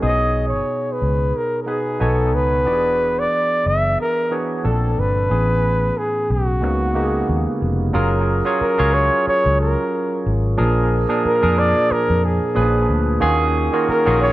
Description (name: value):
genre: R&B, neo-soul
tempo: 91 BPM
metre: 4/4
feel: swing 56% on 16ths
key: F# major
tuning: A4 = 442 Hz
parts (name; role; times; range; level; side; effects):
- breathy flugelhorn; melody; 0.0-14.3 s; F#4 to E5; -20 LUFS; equal; dub echo
- barky tine electric piano; accompaniment; 0.0-14.3 s; A2 to G#5; -20 LUFS; right 1 dB; overdrive, wide subtle chorus, dub echo
- vintage muted fingered electric bass; bass; 0.0-14.3 s; E1 to E#2; -20 LUFS; equal; none
room: light reverb, small room ambience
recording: echo-heavy mix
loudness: -16 LUFS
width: side -16 dB against mid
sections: 0.0-7.9 A section; 7.9-14.3 B section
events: none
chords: 0.0 B69; 2.0 B13; 2.7 E13; 4.6 A#maj9; 5.3 Amaj9; 6.6 C#13sus4; 7.9 F#maj7; 10.6 A#7; 12.6 A#7b9; 13.2 D#m11